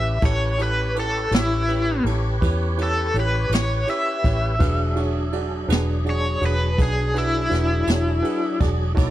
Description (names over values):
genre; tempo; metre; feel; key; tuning
slow blues; 55 BPM (dotted quarters); 12/8; straight; E mixolydian; A4 = 441 Hz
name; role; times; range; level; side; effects
crunchy overdriven guitar; melody; 0.0-8.6 s; E4 to E5; -24 LUFS; left 1 dB; tremolo, slapback echo
clear upright piano; accompaniment; 0.0-9.1 s; C#4 to D5; -29 LUFS; right 3 dB; none
tonewheel organ; sustained chords; 0.0-9.1 s; F#3 to D5; -30 LUFS; equal; slow rotary speaker, chorus vibrato
vintage muted fingered electric bass; bass; 0.0-9.1 s; E1 to E2; -23 LUFS; equal; none
jazz brush drum kit; drums; 0.2-9.1 s; kick drum, ride cymbal, snare drum; -26 LUFS; equal; none
room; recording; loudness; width
studio ambience; dry, close 1970s-style studio recording; -19 LUFS; side -14 dB against mid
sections
0.0-9.1 A section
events
overdriven electric guitar solo 0.0-9.1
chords
0.0 A9; 4.6 E9